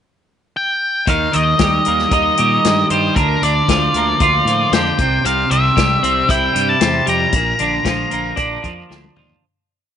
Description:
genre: indie rock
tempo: 115 BPM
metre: 4/4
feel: straight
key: Bb major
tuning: A4 = 441 Hz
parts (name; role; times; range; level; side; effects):
- octave-fuzz lead guitar; melody; 0.6-8.9 s; Bb4 to Bb5; -17 LUFS; left 1 dB; distortion
- twelve-string electric guitar; riff; 1.1-9.4 s; Bb2 to F4; -17 LUFS; right 1 dB; double-tracked left and right
- fuzz fingered electric bass; bass; 1.1-9.3 s; Bb1 to Bb2; -22 LUFS; right 1 dB; overdrive
- vintage drum kit; drums; 1.1-9.4 s; hi-hat, kick drum, snare drum, toms; -20 LUFS; left 3 dB; none
room: light reverb, small room ambience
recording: 1960s-style stereo, nothing above 10.9 kHz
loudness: -13 LUFS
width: side -9 dB against mid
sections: 0.0-1.1 pickup bar; 1.1-9.4 verse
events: fade-out 7.3-9.4; drum fill 8.9-9.4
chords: 0.0 N.C.; 1.1 Eb; 3.2 Bb/D; 5.0 C; 7.3 Bb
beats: 0.03 0.55 | 1.07 1.60 2.12 2.64 | 3.16 3.68 4.20 4.72 | 5.24 5.76 6.28 6.80 | 7.33 7.85 8.37 8.90

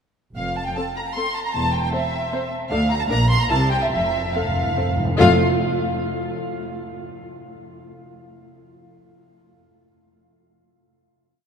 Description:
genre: quick classical-period movement for symphony orchestra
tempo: 139-156 BPM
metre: 3/4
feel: rubato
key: F major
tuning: A4 = 444 Hz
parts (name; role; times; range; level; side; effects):
- warm chamber violin section; melody; 0.4-5.4 s; E5 to C6; -27 LUFS; right 2 dB; none
- warm studio violin section; second line; 0.4-5.4 s; F4 to C6; -25 LUFS; left 1 dB; none
- dark studio cello section; bass; 0.4-5.4 s; D2 to C3; -25 LUFS; right 1 dB; none
- dark studio double bass section; bass; 0.4-5.4 s; E1 to D2; -26 LUFS; right 1 dB; none
- warm studio viola section; accompaniment; 0.8-5.4 s; A3 to C5; -25 LUFS; left 2 dB; none
- timpani; percussion; 3.9-5.4 s; F2; -26 LUFS; equal; none
room: wet cathedral reverb, RT60 5.6 s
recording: in a vast, echoing space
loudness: -19 LUFS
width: side -7 dB against mid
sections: 0.4-5.2 A section; 5.2-6.4 final chord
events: timpani fill 3.9-5.2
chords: 0.4 F; 1.5 C/E; 2.7 Dm; 3.1 Bb; 3.5 C7; 3.9 F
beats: | 0.36 0.76 1.16 | 1.55 1.93 2.32 | 2.71 3.10 3.50 | 3.92 4.35 4.77 | 5.20

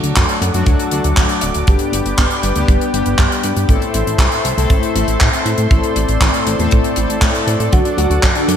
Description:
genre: italo disco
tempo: 119 BPM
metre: 4/4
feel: straight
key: A dorian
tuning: A4 = 440 Hz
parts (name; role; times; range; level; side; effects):
- warm analog pad; sustained chords; 0.0-8.6 s; A4 to D6; -22 LUFS; right 1 dB; chorus
- analog synth brass; stabs; 0.0-7.7 s; G2 to A4; -20 LUFS; left 5 dB; chorus, digital delay
- chorused synth bass; bass; 0.0-8.6 s; D1 to A2; -19 LUFS; equal; none
- tight funk drum kit; drums; 0.0-8.6 s; handclaps, hi-hat; -20 LUFS; equal; gated reverb
- kick drum; drums; 0.2-8.3 s; none; -14 LUFS; equal; none
- wide unison lead; melody; 7.7-8.6 s; D4 to F#4; -18 LUFS; equal; cassette tape, ping-pong delay
- direct-recorded clean electric guitar; arpeggios; 7.7-8.6 s; F#3 to F#4; -24 LUFS; right 5 dB; lush chorus, digital delay
room: moderate lush hall reverb, RT60 2.0 s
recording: bright 1980s-style digital production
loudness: -12 LUFS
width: side -9 dB against mid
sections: 0.0-8.6 A section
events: none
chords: 0.0 D; 1.7 G; 3.7 Am; 7.7 D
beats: 0.16 0.67 1.17 | 1.68 2.18 2.68 3.19 | 3.69 4.20 4.70 5.20 | 5.71 6.21 6.72 7.22 | 7.72 8.23

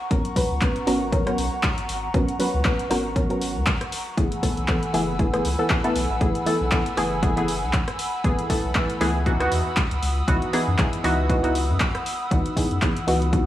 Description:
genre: deep house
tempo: 118 BPM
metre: 4/4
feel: swing 56% on 16ths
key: unclear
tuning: A4 = 440 Hz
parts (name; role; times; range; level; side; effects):
- airy breathy pad; sustained chords; 0.0-13.5 s; F#5 to E6; -31 LUFS; equal; chorus, sidechain pumping
- filtered dub chord stab; stabs; 0.0-13.5 s; E3 to B4; -24 LUFS; equal; chorus, sidechain pumping, analog delay
- round analog bass; bass; 0.1-13.5 s; F#1 to F#2; -26 LUFS; equal; tube saturation, sidechain pumping
- electronic kick drum; drums; 0.1-13.4 s; none; -24 LUFS; equal; overdrive
- punchy analog drum machine; drums; 0.1-13.4 s; handclaps, hi-hat, rim click; -29 LUFS; equal; overdrive
room: light reverb, digital ambience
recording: vinyl crackle, small room ambience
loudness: -20 LUFS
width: side -13 dB against mid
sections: 0.0-13.5 A section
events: none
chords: 0.0 G#m11; 4.2 F#m11; 9.3 C#m11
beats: | 0.11 0.62 1.13 1.64 | 2.14 2.65 3.16 3.67 | 4.18 4.69 5.19 5.70 | 6.21 6.72 7.23 7.74 | 8.24 8.75 9.26 9.77 | 10.28 10.79 11.30 11.80 | 12.31 12.82 13.33

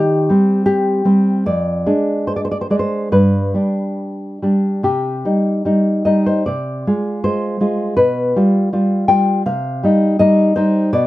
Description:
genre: romantic piece for solo classical guitar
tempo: 68-85 BPM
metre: 2/4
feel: rubato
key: C minor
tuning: A4 = 440 Hz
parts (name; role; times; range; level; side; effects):
- nylon-string guitar; solo; 0.0-11.1 s; F2 to G5; -14 LUFS; equal; none
room: moderate small room reverb, RT60 0.5 s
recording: close, detailed microphones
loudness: -14 LUFS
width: side -16 dB against mid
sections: 0.0-4.8 A section; 4.8-11.1 B section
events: none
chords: 0.0 Cm/Eb; 1.5 Ddim/F; 3.1 G; 4.8 Cm; 6.5 Fm/C; 8.0 G7/B; 9.4 Cm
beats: 0.66 | 1.47 2.27 | 3.10 3.97 | 4.84 5.66 | 6.46 7.23 | 7.97 8.71 | 9.45 10.20 | 10.93

